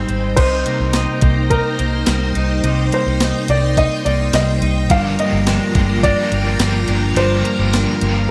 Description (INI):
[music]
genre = dream pop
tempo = 106 BPM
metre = 4/4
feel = straight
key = C minor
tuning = A4 = 438 Hz
[part]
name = string machine, violins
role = sustained chords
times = 0.0-8.3 s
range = Eb4 to C6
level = -26 LUFS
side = equal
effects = ensemble chorus
[part]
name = clean electric guitar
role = arpeggios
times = 0.0-8.3 s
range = G2 to Eb4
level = -23 LUFS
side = equal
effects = analog chorus, digital delay
[part]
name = vintage muted fingered electric bass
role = bass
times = 0.0-8.3 s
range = G1 to C2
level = -21 LUFS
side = equal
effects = none
[part]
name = clean 12-bit digital drum machine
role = drums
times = 0.1-8.1 s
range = crash cymbal, hi-hat, kick drum, snare drum, tambourine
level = -21 LUFS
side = equal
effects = overdrive, gated reverb
[part]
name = felt-muted upright piano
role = melody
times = 0.4-8.3 s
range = Bb4 to F5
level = -23 LUFS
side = equal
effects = digital delay
[part]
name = overdriven electric guitar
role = accompaniment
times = 4.9-8.3 s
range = G2 to G4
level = -26 LUFS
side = equal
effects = tremolo, lush chorus
[sound]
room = light reverb, digital ambience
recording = bright 1980s-style digital production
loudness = -16 LUFS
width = mono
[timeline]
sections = 0.4-8.3 A section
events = none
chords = 0.4 Cm7; 4.9 Gm7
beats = | 0.38 0.94 1.51 2.07 | 2.64 3.21 3.77 4.34 | 4.90 5.47 6.04 6.60 | 7.17 7.73 8.30